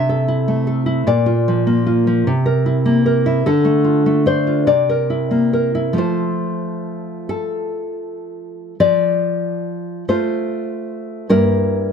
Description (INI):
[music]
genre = romantic piece for solo classical guitar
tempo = 37-53 BPM (dotted quarters)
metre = 6/8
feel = rubato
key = F major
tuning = A4 = 440 Hz
[part]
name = nylon-string guitar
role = solo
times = 0.0-11.9 s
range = G2 to E5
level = -15 LUFS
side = left 1 dB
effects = none
[sound]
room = light reverb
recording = close, detailed microphones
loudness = -15 LUFS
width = side -6 dB against mid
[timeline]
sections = 0.0-8.8 A section; 8.8-11.9 B section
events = none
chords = 0.0 Am/C; 1.1 Bb; 2.3 C7; 3.5 Dm; 4.7 C7; 6.0 F; 11.3 Edim/G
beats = | 1.08 2.27 | 3.46 4.69 | 5.99 7.31 | 8.81 10.09 | 11.30